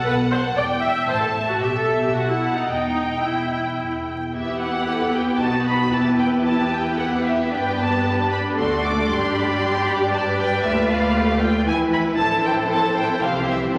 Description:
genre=quick classical-period movement for string orchestra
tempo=114 BPM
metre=3/4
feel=rubato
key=E minor, A minor from 10.6 s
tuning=A4 = 440 Hz
part: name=rich symphonic violin section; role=melody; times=0.0-13.6 s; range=E5 to D6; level=-28 LUFS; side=equal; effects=none
part: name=warm symphonic violin section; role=second line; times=0.0-13.8 s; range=F#4 to A5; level=-28 LUFS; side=equal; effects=none
part: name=rich symphonic viola section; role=accompaniment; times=0.0-13.7 s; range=E3 to E5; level=-25 LUFS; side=equal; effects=none
part: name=dark symphonic double bass section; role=bass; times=0.1-13.8 s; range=E1 to G2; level=-33 LUFS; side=equal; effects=none
part: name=rich symphonic cello section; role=bass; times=0.1-13.8 s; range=E2 to B4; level=-30 LUFS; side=equal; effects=none
room=wet recital hall reverb, RT60 1.8 s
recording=vinyl crackle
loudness=-21 LUFS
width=mono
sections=0.0-4.4 A section; 4.4-13.8 B section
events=none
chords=0.0 B5; 0.6 Em; 1.1 A5; 1.6 E5/B; 2.1 B5; 2.7 Em; 5.4 B7; 5.9 Em; 7.5 G; 8.6 D7; 9.1 G; 10.6 Bm7b5/D; 11.7 E5; 12.2 Am; 13.2 C

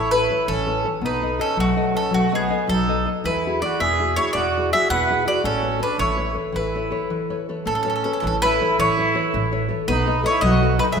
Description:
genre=italian folk, Italian serenade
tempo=109 BPM (dotted quarters)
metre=6/8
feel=rubato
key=A major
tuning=A4 = 440 Hz
part: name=bowl-back mandolin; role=melody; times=0.0-11.0 s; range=F#4 to F#5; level=-22 LUFS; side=equal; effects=none
part: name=warm trumpet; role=second line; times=0.0-11.0 s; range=A3 to B4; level=-26 LUFS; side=right 5 dB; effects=none
part: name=nylon-string guitar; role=accompaniment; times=0.0-11.0 s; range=B2 to D#5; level=-24 LUFS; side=left 4 dB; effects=none
part: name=upright bass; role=bass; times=0.0-11.0 s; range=A1 to E2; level=-27 LUFS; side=right 1 dB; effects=none
room=wet scoring stage reverb, RT60 1.7 s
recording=minimal, uncompressed stereo recording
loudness=-18 LUFS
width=side -6 dB against mid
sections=0.0-7.7 A section; 7.7-11.0 A section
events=break 7.1-7.7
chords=0.0 Aadd9; 1.0 B7; 3.2 Eadd9; 5.4 Aadd9; 9.9 B7

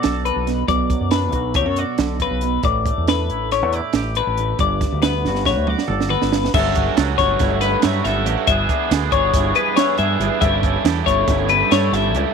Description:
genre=math rock and midwest emo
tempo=278 BPM (eighths)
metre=9/8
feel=straight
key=unclear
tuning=A4 = 440 Hz
part: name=twangy electric guitar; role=accompaniment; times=0.0-12.3 s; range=G2 to B4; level=-26 LUFS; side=right 14 dB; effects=lush chorus
part: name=twelve-string electric guitar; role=arpeggios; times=0.0-12.3 s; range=B4 to E5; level=-20 LUFS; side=left 13 dB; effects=none
part: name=growling fingered electric bass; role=bass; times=0.0-12.2 s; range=G1 to G2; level=-22 LUFS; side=equal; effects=overdrive
part: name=compact cocktail drum kit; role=drums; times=0.0-12.2 s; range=crash cymbal, hi-hat, kick drum, snare drum, toms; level=-21 LUFS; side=right 4 dB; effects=none
part: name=raw garage guitar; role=riff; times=6.5-12.3 s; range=E3 to A4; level=-23 LUFS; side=right 13 dB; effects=overdrive, spring reverb
room=light reverb, small room ambience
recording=1960s-style stereo with parts hard left and right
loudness=-16 LUFS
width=side -6 dB against mid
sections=0.0-6.5 A section; 6.5-12.3 B section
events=drum fill 5.2-6.5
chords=0.0 Bm7; 2.6 A7sus4; 4.6 Gmaj7; 6.5 F#m7/G; 8.5 E7/G; 10.4 A7/G

